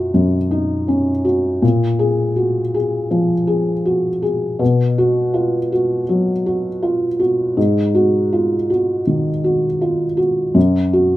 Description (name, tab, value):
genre	neoclassical minimalist piano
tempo	80 BPM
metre	4/4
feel	rubato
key	unclear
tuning	A4 = 437 Hz
part	felt-muted upright piano	solo	0.0-11.2 s	Gb2 to Ab4	-15 LUFS	equal	none
room	light reverb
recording	minimal, uncompressed stereo recording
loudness	-15 LUFS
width	side -15 dB against mid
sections	0.0-11.2 A section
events	none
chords	0.0 Ebm7/Gb; 1.6 Bb5; 4.6 B5; 7.6 Ab5; 10.6 N.C.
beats	0.12 0.87 | 1.62 2.37 3.11 3.86 | 4.60 5.34 6.08 6.83 | 7.57 8.31 9.06 9.81 | 10.56